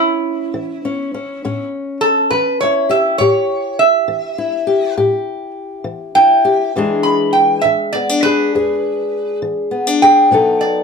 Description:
acoustic country blues, solo or duo; 68 BPM (dotted quarters); 12/8; straight; A4 = 441 Hz
lap resonator guitar; melody; 0.0-10.8 s; E4 to B5; -14 LUFS; right 2 dB
fingerpicked old ladder-braced acoustic guitar; accompaniment; 0.0-10.8 s; E2 to A4; -17 LUFS; left 4 dB
moderate studio reverb, RT60 0.6 s; -13 LUFS; side -5 dB against mid
0.0-10.8 A section
0.0 A7; 6.8 E7; 10.3 B7

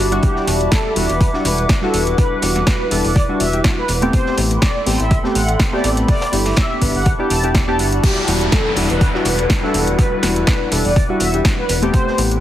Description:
deep house; 123 BPM; 4/4; swing 54% on 16ths; E minor; A4 = 437 Hz
mellow horn-like synth lead; melody; 0.0-12.2 s; G4 to A5; -23 LUFS; equal; ensemble chorus, dub echo
warbly tape-like pad; sustained chords; 0.0-12.4 s; G3 to D6; -26 LUFS; left 1 dB; chorus, built-in reverb, sidechain pumping
rubbery square bass; bass; 0.0-12.4 s; E1 to A1; -20 LUFS; equal; sidechain pumping
warbly tape-like pad; texture; 0.0-12.4 s; E4 to B5; -27 LUFS; left 1 dB; chorus, built-in reverb, phaser, sidechain pumping
warm analog keys; stabs; 0.1-12.4 s; G3 to B4; -21 LUFS; equal; chorus, vintage 12-bit sampler grit, sidechain pumping
deep house drum kit; drums; 0.1-12.4 s; crash cymbal, hi-hat, snare drum; -22 LUFS; equal; overdrive
crunchy breakbeat drum kit; drums; 0.2-12.3 s; hi-hat, snare drum; -30 LUFS; equal; sidechain pumping on hats, high-pass filter on hats, high-pass filter on snare, high-pass filter on room
electronic kick drum; drums; 0.2-12.0 s; -16 LUFS; equal; overdrive
downlifter; sound effects; 8.0-11.9 s; -26 LUFS; equal
light reverb; heavily compressed radio sound, multiband compression; -14 LUFS; side -12 dB against mid
0.0-8.0 A section; 8.0-12.4 B section
drop 8.0-12.4
0.2 Em9; 4.1 Am9; 6.1 G6; 8.0 Em9

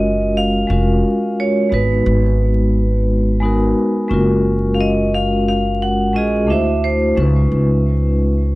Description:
lo-fi hip hop; 88 BPM; 4/4; swing 58% on 16ths; F# major; A4 = 442 Hz
vibraphone with hard mallets; melody; 0.0-7.1 s; B4 to F#5; -21 LUFS; moving between left 2 dB and right 6 dB; auto-pan, low-pass filter, plate reverb
vibraphone with soft mallets; accompaniment; 0.0-8.6 s; G#3 to C5; -17 LUFS; left 1 dB; low-pass filter, plate reverb
upright bass; bass; 0.0-8.6 s; E#1 to D2; -17 LUFS; equal
moderate studio reverb, RT60 0.6 s; vinyl crackle; -14 LUFS; side -19 dB against mid
0.0-8.6 A section
0.0 F#maj9; 1.7 G#m7; 4.1 F#maj9; 6.5 D9; 7.2 C#7

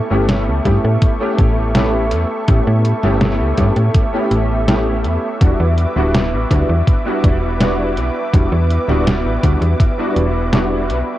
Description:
vaporwave; 82 BPM; 4/4; straight; E dorian; A4 = 441 Hz
warm electric grand piano; accompaniment; 0.0-11.2 s; G3 to G4; -19 LUFS; equal; ensemble chorus, vintage 12-bit sampler grit, dub echo
lush unison pad; sustained chords; 0.0-11.2 s; A4 to D6; -23 LUFS; right 1 dB; chorus
slap-like FM bass; bass; 0.1-11.0 s; D1 to A2; -17 LUFS; equal; tube saturation
detuned 8-bit digital drum machine; drums; 0.3-11.0 s; hi-hat, snare drum; -20 LUFS; equal; dub echo
electronic kick drum; drums; 0.7-9.9 s; -14 LUFS; equal
light reverb, digital ambience; echo-heavy mix, cassette tape; -13 LUFS; side -14 dB against mid
0.0-11.2 A section
0.0 A7; 5.4 Em7

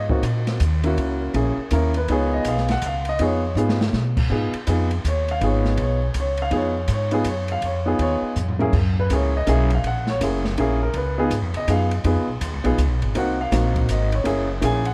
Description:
jazz piano trio; 163 BPM; 3/4; swing 64% on 8ths; Db mixolydian; A4 = 439 Hz
warm grand piano; melody; 0.0-14.9 s; Bb3 to Ab5; -25 LUFS; equal; digital delay
upright bass; bass; 0.0-14.9 s; Gb1 to Cb3; -25 LUFS; equal
open jazz drum kit; drums; 0.1-14.9 s; crash cymbal, hi-hat, kick drum, ride cymbal, snare drum, toms; -31 LUFS; equal
light reverb, studio reverb; vinyl crackle; -22 LUFS; mono
0.0-4.3 A section; 4.3-14.9 A section
grand piano solo 0.0-14.9; drum fill 3.6-3.9, 8.4-8.7
0.0 Ab7sus2; 1.0 Gb7; 2.1 Db9; 8.7 Gb9; 10.9 Db9; 13.2 Ab9; 14.3 Gb9

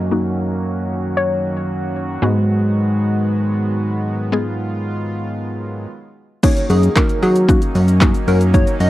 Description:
dance-pop; 114 BPM; 4/4; straight; F# major; A4 = 440 Hz
soft round pluck; melody; 0.0-1.9 s; C#5 to D#5; -24 LUFS; left 3 dB; chorus, low-pass filter, tape echo
mallet-like synth pluck; accompaniment; 0.0-8.8 s; G#3 to G#4; -21 LUFS; left 2 dB; chorus, sidechain pumping, low-pass filter
soft supersaw; sustained chords; 0.0-8.9 s; D#3 to F#4; -25 LUFS; right 1 dB; sidechain pumping, low-pass filter
plucky analog bass; bass; 0.0-8.9 s; F#2 to F#3; -17 LUFS; equal; sidechain pumping
downlifter; sound effects; 0.0-2.2 s; -41 LUFS; equal
plucky unison lead; melody; 6.4-8.9 s; G#4 to D#5; -21 LUFS; left 2 dB; sidechain pumping
deep house drum kit; drums; 6.4-8.9 s; crash cymbal, handclaps, hi-hat, kick drum, shaker; -16 LUFS; equal; overdrive
little or no reverb; dry, close 1970s-style studio recording; -15 LUFS; side -15 dB against mid
0.0-6.4 A section; 6.4-8.9 B section
filter sweep 0.0-6.4; stop 5.9-6.4; drop 6.4-8.9
0.0 F#6; 2.2 G#m7; 6.4 F#6

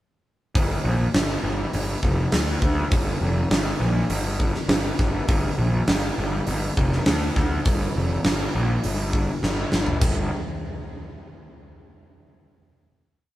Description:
hard rock; 101 BPM; 4/4; straight; G minor; A4 = 442 Hz
fuzz picked electric bass; bass; 0.6-10.3 s; F1 to D2; -23 LUFS; equal; overdrive
huge arena drum kit; drums; 0.6-10.2 s; crash cymbal, hi-hat, kick drum, snare drum, toms; -23 LUFS; equal
light reverb; band playing live in one room; -20 LUFS; side -15 dB against mid
0.6-10.0 riff; 10.0-12.4 final note
drum fill 9.4-10.0

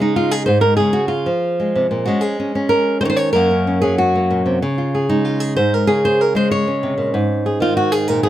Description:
flamenco; 189 BPM; 4/4; straight; Db major; A4 = 440 Hz
flamenco guitar; solo; 0.0-8.3 s; Gb2 to Db5; -15 LUFS; equal
light reverb; close, detailed microphones; -15 LUFS; side -12 dB against mid
0.0-8.3 A section
0.0 Db; 2.1 Absus4; 3.3 Gb; 4.6 Db; 7.1 Ab5

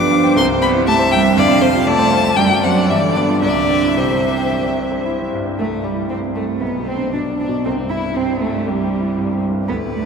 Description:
quick classical-period movement for piano quartet; 109-122 BPM; 4/4; rubato; C major; A4 = 441 Hz
rich violin; melody; 0.0-10.1 s; G3 to D6; -21 LUFS; left 5 dB
rich cello; second line; 0.0-10.1 s; C3 to E4; -19 LUFS; right 4 dB
clear concert grand piano; accompaniment; 0.0-10.1 s; B1 to A5; -19 LUFS; right 1 dB
rich violin; second line; 0.1-10.1 s; G3 to F5; -23 LUFS; left 2 dB
wet cathedral reverb, RT60 5.7 s; in a vast, echoing space; -14 LUFS; side -6 dB against mid
0.0-5.6 A section; 5.6-10.1 B section
0.4 C; 1.4 F; 2.4 D7/F#; 2.9 G7; 3.4 C; 6.6 Bm; 7.7 C

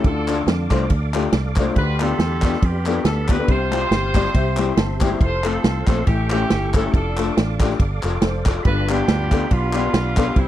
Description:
uptempo gospel; 140 BPM; 4/4; swing 56% on 8ths; A4 = 440 Hz
clear horn section; melody; 0.0-10.5 s; G3 to C5; -25 LUFS; equal
warm grand piano; accompaniment; 0.0-10.5 s; G2 to A5; -24 LUFS; left 6 dB
tonewheel organ; sustained chords; 0.0-10.5 s; G4 to D6; -31 LUFS; right 5 dB; slow rotary speaker, chorus vibrato
fingered electric bass; bass; 0.0-10.5 s; F1 to F2; -23 LUFS; right 1 dB
natural country drum kit; drums; 0.0-10.5 s; kick drum, ride cymbal, snare drum; -19 LUFS; right 1 dB
group handclap; percussion; 0.3-10.3 s; -31 LUFS; left 3 dB
little or no reverb; dry, close 1970s-style studio recording; -17 LUFS; side -12 dB against mid
0.0-10.5 A section
grand piano fill 3.9-5.2
0.0 Dm; 1.8 G7/D; 3.5 Csus4; 4.3 C; 5.2 F; 6.1 A7; 6.9 Dm/F; 8.7 G7

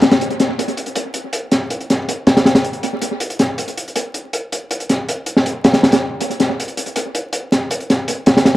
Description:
drum and bass; 160 BPM; 4/4; straight
crunchy breakbeat drum kit; drums; 0.0-8.5 s; hi-hat, snare drum; -14 LUFS; equal; analog delay
moderate spring reverb, RT60 1.3 s; echo-heavy mix, vinyl crackle; -15 LUFS; side -16 dB against mid
0.2-8.6 A section

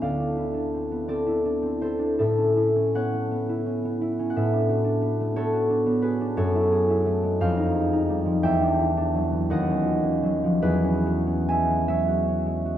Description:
classical, solo harp piece; 46-61 BPM (dotted quarters); 6/8; rubato; A4 = 441 Hz
concert harp; solo; 0.0-12.8 s; D2 to G#5; -21 LUFS; equal
wet church reverb, RT60 3.5 s; dark, warm production; -21 LUFS; side -11 dB against mid
0.0-12.8 A section
0.0 Dm9; 2.2 Aadd9; 4.3 D69/A; 6.4 F#m9; 7.4 Fm9; 8.5 Em9; 9.5 D#m9; 10.6 E69

